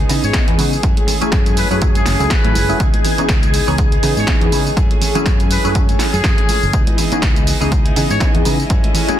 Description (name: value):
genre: filtered disco house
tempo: 122 BPM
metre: 4/4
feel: swing 56% on 16ths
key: C# minor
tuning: A4 = 442 Hz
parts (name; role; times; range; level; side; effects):
- string machine, full ensemble; sustained chords; 0.0-9.2 s; E4 to G#5; -24 LUFS; left 1 dB; ensemble chorus, sidechain pumping, low-pass filter
- direct-recorded clean electric guitar; riff; 0.0-9.2 s; E3 to G#4; -26 LUFS; right 1 dB; sidechain pumping, low-pass filter
- fingered electric bass; bass; 0.0-9.1 s; F#1 to C#3; -20 LUFS; equal; sidechain pumping, low-pass filter
- funky polysynth comp; accompaniment; 0.1-9.2 s; E3 to G#4; -21 LUFS; equal; chorus, phaser, cassette tape, sidechain pumping, low-pass filter
- punchy analog drum machine; drums; 0.1-9.2 s; hi-hat, snare drum, tambourine; -22 LUFS; right 1 dB; sidechain pumping on hats, sidechain pumping on perc
- tambourine and congas; percussion; 0.1-9.2 s; none; -28 LUFS; right 4 dB; none
- muted trumpet section; melody; 0.2-8.3 s; G#4 to C#5; -24 LUFS; left 2 dB; sidechain pumping, low-pass filter, digital delay
- electronic kick drum; drums; 0.3-8.8 s; none; -16 LUFS; equal; none
room: light reverb, digital ambience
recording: dense, heavily limited modern master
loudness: -12 LUFS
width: side -11 dB against mid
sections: 0.0-9.2 A section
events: none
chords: 0.0 C#m9; 0.8 F#m9; 2.8 C#m9; 4.8 F#m9; 6.7 C#m9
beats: 0.34 | 0.83 1.32 1.82 2.31 | 2.80 3.29 3.78 4.28 | 4.77 5.26 5.75 6.24 | 6.74 7.23 7.72 8.21 | 8.70 9.19